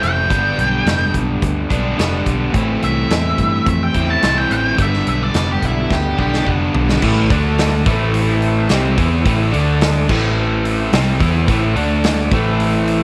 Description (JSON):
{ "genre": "blues rock power trio and southern rock", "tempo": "107 BPM", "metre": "4/4", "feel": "straight", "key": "A minor", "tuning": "A4 = 440 Hz", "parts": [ { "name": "octave-fuzz lead guitar", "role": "melody", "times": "0.0-6.5 s", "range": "E4 to A5", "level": "-22 LUFS", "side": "equal", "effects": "distortion" }, { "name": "crunchy overdriven guitar", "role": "riff", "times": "0.0-13.0 s", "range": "G2 to E4", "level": "-20 LUFS", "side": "equal", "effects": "none" }, { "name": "vintage muted picked electric bass", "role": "bass", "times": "0.0-13.0 s", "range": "F1 to G2", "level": "-22 LUFS", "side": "equal", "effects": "none" }, { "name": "huge arena drum kit", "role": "drums", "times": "0.0-13.0 s", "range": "crash cymbal, hi-hat, kick drum, snare drum, toms", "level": "-23 LUFS", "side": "equal", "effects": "none" }, { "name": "overdriven tonewheel organ", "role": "sustained chords", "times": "7.3-13.0 s", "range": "A3 to D5", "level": "-30 LUFS", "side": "equal", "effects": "none" } ], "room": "small room ambience", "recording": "none", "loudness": "-16 LUFS", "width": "mono", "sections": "0.0-7.0 A section; 7.0-13.0 B section", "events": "drum fill 5.9-7.0", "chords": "0.3 G; 2.5 Am; 4.8 G; 7.0 A5; 7.3 D5; 7.9 Am; 9.5 D5; 10.1 Am; 11.8 D5; 12.3 Am", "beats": "| 0.31 0.87 1.43 1.99 | 2.55 3.11 3.67 4.23 | 4.79 5.35 5.91 6.47 | 7.03 7.59 8.14 8.70 | 9.26 9.81 10.37 10.93 | 11.48 12.04 12.60" }